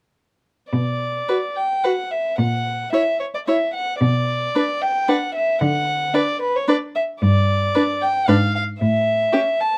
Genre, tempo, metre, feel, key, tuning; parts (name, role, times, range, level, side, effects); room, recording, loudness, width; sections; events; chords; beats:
quick classical-period movement for string quartet; 112 BPM; 3/4; rubato; B minor; A4 = 441 Hz
warm violin; melody; 0.7-9.8 s; B4 to A5; -23 LUFS; equal
rich cello; bass; 0.7-9.2 s; G2 to D3; -22 LUFS; equal
rich violin; second line; 1.3-9.4 s; G4 to C#5; -26 LUFS; equal
warm viola; accompaniment; 1.3-9.4 s; C#4 to F#4; -24 LUFS; equal
light reverb; dark, warm production; -20 LUFS; mono
0.7-9.8 A section
0.7 Bm; 2.4 F#7/A#; 4.0 Bm; 5.6 Bm/D (rootless); 7.2 G5; 8.3 G#5; 8.8 A5
| 0.73 1.29 1.84 | 2.39 2.93 3.47 | 4.01 4.55 5.08 | 5.62 6.15 6.68 | 7.22 7.75 8.28 | 8.81 9.34